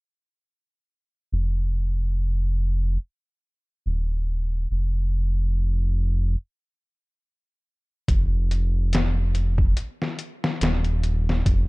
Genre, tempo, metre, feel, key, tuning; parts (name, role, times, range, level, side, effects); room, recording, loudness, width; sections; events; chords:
trip hop; 71 BPM; 4/4; swing 55% on 16ths; A4 = 439 Hz
round analog bass; bass; 1.3-11.7 s; Eb1 to F1; -22 LUFS; equal
trip hop sampler-style drum kit; drums; 8.1-11.7 s; hi-hat, kick drum, snare drum; -24 LUFS; equal
little or no reverb; dark, warm production; -22 LUFS; side -25 dB against mid
1.3-11.7 A section